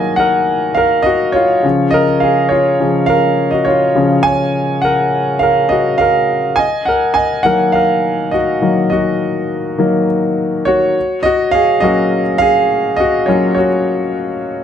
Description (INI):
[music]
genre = pop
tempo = 103 BPM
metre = 4/4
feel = straight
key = unclear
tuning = A4 = 440 Hz
[part]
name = clear grand piano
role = solo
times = 0.0-14.6 s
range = Db3 to Ab5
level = -12 LUFS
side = equal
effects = none
[sound]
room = moderate studio reverb, RT60 0.8 s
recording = none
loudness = -11 LUFS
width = side -9 dB against mid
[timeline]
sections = 0.0-14.6 A section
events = grand piano solo 0.0-14.6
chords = 0.0 Ebm; 1.6 Bbm/Db; 6.6 Ebm; 11.0 Gbadd9